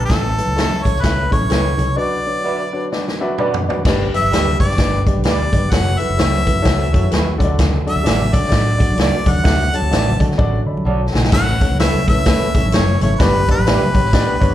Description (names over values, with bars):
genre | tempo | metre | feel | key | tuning
uptempo 1960s-style soul | 128 BPM | 4/4 | swing 60% on 8ths | A mixolydian | A4 = 439 Hz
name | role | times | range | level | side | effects
bright harmonica | melody | 0.0-14.5 s | A4 to A5 | -21 LUFS | left 1 dB | slapback echo
dark upright piano | accompaniment | 0.0-14.5 s | G2 to B5 | -22 LUFS | left 3 dB | slapback echo
tonewheel organ | sustained chords | 0.0-14.5 s | D3 to A4 | -30 LUFS | right 1 dB | none
vintage muted fingered electric bass | bass | 0.0-14.5 s | F#1 to D3 | -19 LUFS | equal | none
swinging big-band drum kit | drums | 0.1-14.5 s | crash cymbal, hi-hat, kick drum, snare drum, toms | -17 LUFS | equal | none
congas | percussion | 0.1-14.3 s | none | -26 LUFS | equal | none
electric guitar through a small old amp | stabs | 0.6-13.8 s | E4 to D5 | -26 LUFS | right 8 dB | slapback echo
room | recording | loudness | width
light reverb | live gig heard through the venue's PA, club reverb | -14 LUFS | side -12 dB against mid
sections
0.0-3.8 A section; 3.8-11.3 B section; 11.3-14.5 C section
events
break 2.0-3.8; drum fill 2.9-3.8, 10.4-11.3; upright piano fill 10.6-11.3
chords
0.1 A; 2.0 Bm; 3.8 G; 5.7 F#m7; 7.4 D; 11.3 A; 13.2 G